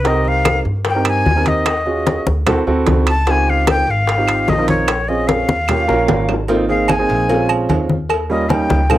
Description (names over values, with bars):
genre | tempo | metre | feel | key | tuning
Afro-Cuban jazz | 149 BPM | 4/4 | straight | unclear | A4 = 440 Hz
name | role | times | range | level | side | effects
breathy bright jazz flute | melody | 0.0-9.0 s | Db5 to A5 | -19 LUFS | left 2 dB | cassette tape
warm concert grand piano | accompaniment | 0.0-9.0 s | G3 to Bb4 | -19 LUFS | right 3 dB | cassette tape
upright bass | bass | 0.0-9.0 s | Ab1 to G2 | -20 LUFS | equal | none
bongos and cowbell | percussion | 0.0-9.0 s | none | -23 LUFS | left 6 dB | none
congas | percussion | 0.1-9.0 s | none | -20 LUFS | left 2 dB | none
timbales and agogo bells | percussion | 0.1-9.0 s | none | -22 LUFS | right 7 dB | none
claves | percussion | 0.5-9.0 s | none | -27 LUFS | right 6 dB | none
room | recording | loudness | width
moderate studio reverb, RT60 0.6 s | home recording on cassette | -13 LUFS | side -14 dB against mid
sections
0.0-6.5 A section; 6.5-9.0 B section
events
drum fill 5.7-6.5; flute solo 6.5-9.0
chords
0.1 Cm7; 1.7 Ebm11; 2.5 D9; 3.3 Dbmaj9#11; 4.9 Bbm7; 5.7 Eb9; 6.5 Ab69; 7.3 Bbm7; 8.1 Eb7